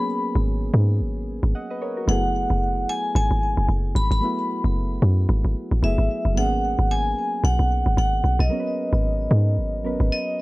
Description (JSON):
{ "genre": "amapiano", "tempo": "112 BPM", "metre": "4/4", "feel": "swing 58% on 16ths", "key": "G# minor", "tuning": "A4 = 440 Hz", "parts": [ { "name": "vibraphone with hard mallets", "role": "melody", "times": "0.0-10.4 s", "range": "D#5 to B5", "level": "-26 LUFS", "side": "equal", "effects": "ping-pong delay" }, { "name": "soft electric-piano-like synth keys", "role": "accompaniment", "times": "0.0-10.4 s", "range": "F#3 to F#5", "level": "-28 LUFS", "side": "right 1 dB", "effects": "chorus" }, { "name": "deep log drum bass", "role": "bass", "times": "0.4-10.1 s", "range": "F#1 to G#2", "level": "-20 LUFS", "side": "equal", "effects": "none" } ], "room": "little or no reverb", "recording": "worn, warbling old tape, cassette tape, warbly pitch drift", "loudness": "-20 LUFS", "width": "side -20 dB against mid", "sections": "0.0-10.4 A section", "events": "none", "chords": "0.0 G#m11; 2.1 F#m11; 6.4 G#m11" }